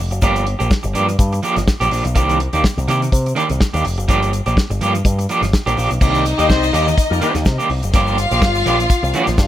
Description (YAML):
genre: disco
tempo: 125 BPM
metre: 4/4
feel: swing 56% on 16ths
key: C minor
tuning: A4 = 440 Hz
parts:
  - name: electric guitar at the edge of break-up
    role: accompaniment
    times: 0.0-9.4 s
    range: Eb3 to G4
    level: -19 LUFS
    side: right 3 dB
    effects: tremolo
  - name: picked electric bass with an envelope filter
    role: bass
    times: 0.0-9.5 s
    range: F1 to C3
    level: -19 LUFS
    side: equal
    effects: none
  - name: tube shaker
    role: percussion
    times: 0.0-9.5 s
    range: none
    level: -35 LUFS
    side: left 8 dB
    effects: none
  - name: damped 70s drum kit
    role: drums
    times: 0.1-9.5 s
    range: crash cymbal, hi-hat, kick drum, snare drum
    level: -18 LUFS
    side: equal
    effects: none
  - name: warm symphonic violin section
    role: second line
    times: 6.0-9.5 s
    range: Eb4 to F5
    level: -20 LUFS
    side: left 3 dB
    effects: tape echo
  - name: clear horn section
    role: stabs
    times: 6.4-7.3 s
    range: G3 to Eb5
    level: -22 LUFS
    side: left 4 dB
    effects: none
room: little or no reverb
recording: none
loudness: -14 LUFS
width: side -12 dB against mid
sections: 0.0-6.0 A section; 6.0-9.5 B section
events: none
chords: 0.2 Gm7; 2.2 Cm9; 4.1 Gm7; 6.0 Cm9; 7.9 Gm7